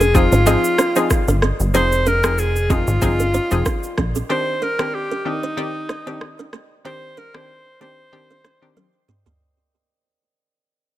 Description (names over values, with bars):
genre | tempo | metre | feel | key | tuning
afrobeats | 94 BPM | 4/4 | swing 55% on 16ths | C minor | A4 = 440 Hz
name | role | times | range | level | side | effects
breathy alto saxophone | melody | 0.0-8.7 s | Eb4 to C5 | -21 LUFS | equal | digital delay
hollow square pluck | accompaniment | 0.0-8.8 s | Eb3 to D5 | -23 LUFS | left 2 dB | chorus
buzzing kalimba | riff | 0.0-9.4 s | Bb3 to Eb5 | -26 LUFS | right 4 dB | digital delay
plucky analog bass | bass | 0.0-4.2 s | F1 to Bb1 | -19 LUFS | equal | none
afro-pop drum kit | drums | 0.0-9.4 s | kick drum, rim click, shaker, toms | -22 LUFS | equal | overdrive
room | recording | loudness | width
studio ambience | none | -16 LUFS | side -14 dB against mid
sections
0.0-9.4 A section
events
fade-out 0.0-9.4; drum fill 8.8-9.4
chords
0.0 Fm7; 4.3 Cmadd9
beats
0.47 1.10 | 1.74 2.38 3.02 3.66 | 4.30 4.93 5.57 6.21 | 6.85 7.49 8.13 8.76